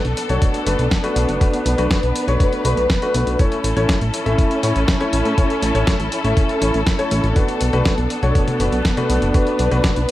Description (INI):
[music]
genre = italo disco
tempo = 121 BPM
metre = 4/4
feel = straight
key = B minor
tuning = A4 = 443 Hz
[part]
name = muted studio string section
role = sustained chords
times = 0.0-10.1 s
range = B3 to B4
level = -22 LUFS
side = equal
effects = none
[part]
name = chorused synth bass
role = bass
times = 0.0-10.1 s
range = F#1 to A2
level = -20 LUFS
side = equal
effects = none
[part]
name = dusty soul sampler-style drum kit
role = drums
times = 0.0-10.1 s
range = hi-hat, snare drum, toms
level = -24 LUFS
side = equal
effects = studio reverb
[part]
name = warm concert grand piano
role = stabs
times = 0.3-9.9 s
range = A3 to E5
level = -22 LUFS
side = left 2 dB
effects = ping-pong delay
[part]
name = electronic kick drum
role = drums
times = 0.4-9.9 s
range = none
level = -18 LUFS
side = equal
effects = studio reverb
[sound]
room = light reverb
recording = vinyl crackle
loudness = -15 LUFS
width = side -15 dB against mid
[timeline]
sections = 0.0-10.1 A section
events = none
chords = 0.0 Bm7; 3.4 A; 7.4 Bm7